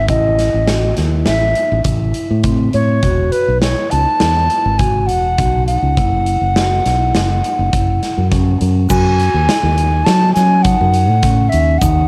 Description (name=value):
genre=progressive instrumental, band music in an uneven meter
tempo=102 BPM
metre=5/4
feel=straight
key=F# dorian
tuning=A4 = 439 Hz
part: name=bright baroque flute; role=melody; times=0.0-12.1 s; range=B4 to A5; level=-19 LUFS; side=equal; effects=cassette tape, analog delay
part: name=fingered electric bass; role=bass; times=0.0-12.1 s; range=E1 to F#3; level=-18 LUFS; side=equal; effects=none
part: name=vibraphone with medium mallets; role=arpeggios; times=0.1-12.1 s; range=C4 to F#4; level=-25 LUFS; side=equal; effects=none
part: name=big rock drum kit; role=drums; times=0.1-12.0 s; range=crash cymbal, hi-hat, kick drum, snare drum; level=-22 LUFS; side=equal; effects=cassette tape
part: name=egg shaker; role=percussion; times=8.9-12.1 s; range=none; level=-33 LUFS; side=equal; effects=none
room=light reverb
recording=home recording on cassette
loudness=-14 LUFS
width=mono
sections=0.0-8.9 A section; 8.9-12.1 B section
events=none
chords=0.1 Am; 3.0 E; 6.0 F#5; 8.9 F#m